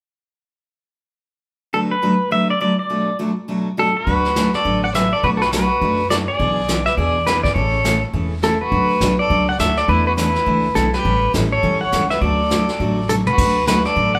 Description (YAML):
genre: country, western swing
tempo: 206 BPM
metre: 4/4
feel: swing 61% on 8ths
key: D major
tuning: A4 = 441 Hz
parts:
  - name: pedal steel guitar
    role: melody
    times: 1.7-14.2 s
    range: A4 to F#5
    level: -21 LUFS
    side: equal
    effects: none
  - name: picked steel-string acoustic guitar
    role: accompaniment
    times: 1.7-14.2 s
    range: B2 to B4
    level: -24 LUFS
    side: equal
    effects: none
  - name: dark fiddle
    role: second line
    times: 3.8-14.2 s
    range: D4 to D5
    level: -29 LUFS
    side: equal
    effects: none
  - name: upright bass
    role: bass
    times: 4.1-14.2 s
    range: E1 to F#2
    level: -25 LUFS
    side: equal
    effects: none
  - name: vintage brush drum kit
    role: drums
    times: 4.1-14.2 s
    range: brushed snare drum, crash cymbal, hi-hat, kick drum, snare drum, toms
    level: -27 LUFS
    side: equal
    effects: none
room: moderate large studio reverb, RT60 1.2 s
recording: band playing live in one room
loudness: -18 LUFS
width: mono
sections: 1.7-4.1 A section; 4.1-13.4 B section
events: drum fill 13.1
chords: 1.7 D6; 2.9 Bm7; 4.1 D6; 5.2 Bm7; 6.4 E7/B; 7.6 A; 8.7 D; 9.9 E7sus4; 11.1 A7; 12.2 D; 13.4 D6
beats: | 1.73 2.03 2.32 2.61 | 2.90 3.19 3.48 3.77 | 4.07 4.36 4.65 4.94 | 5.23 5.52 5.81 6.10 | 6.39 6.69 6.98 7.27 | 7.56 7.85 8.14 8.43 | 8.72 9.01 9.30 9.60 | 9.89 10.18 10.47 10.76 | 11.05 11.34 11.63 11.93 | 12.22 12.51 12.80 13.09 | 13.38 13.67 13.96